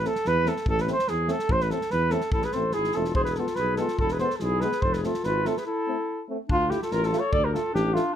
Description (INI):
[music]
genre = balkan folk, Balkan brass band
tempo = 144 BPM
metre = 2/4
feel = swing 55% on 16ths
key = A harmonic minor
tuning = A4 = 442 Hz
[part]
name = mellow flugelhorn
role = melody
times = 0.0-8.1 s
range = F4 to D5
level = -26 LUFS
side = right 2 dB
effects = none
[part]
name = warm euphonium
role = accompaniment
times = 0.0-8.0 s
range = B3 to F4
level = -34 LUFS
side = left 8 dB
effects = none
[part]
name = warm trombone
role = accompaniment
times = 0.0-8.0 s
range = G#3 to A3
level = -34 LUFS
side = right 8 dB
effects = none
[part]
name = dark tuba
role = bass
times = 0.0-8.0 s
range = E1 to E2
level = -28 LUFS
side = equal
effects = none
[part]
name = natural country drum kit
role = percussion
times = 0.0-8.0 s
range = kick drum, snare drum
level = -32 LUFS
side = equal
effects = none
[part]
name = mellow clarinet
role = second line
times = 2.3-8.2 s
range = D4 to A4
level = -32 LUFS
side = left 6 dB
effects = none
[sound]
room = light reverb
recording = none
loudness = -23 LUFS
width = side -9 dB against mid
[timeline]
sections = 0.0-6.5 A section; 6.5-8.2 B section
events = break 5.7-6.5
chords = 0.0 Am; 3.2 E; 4.8 F; 5.7 Am; 6.5 Dm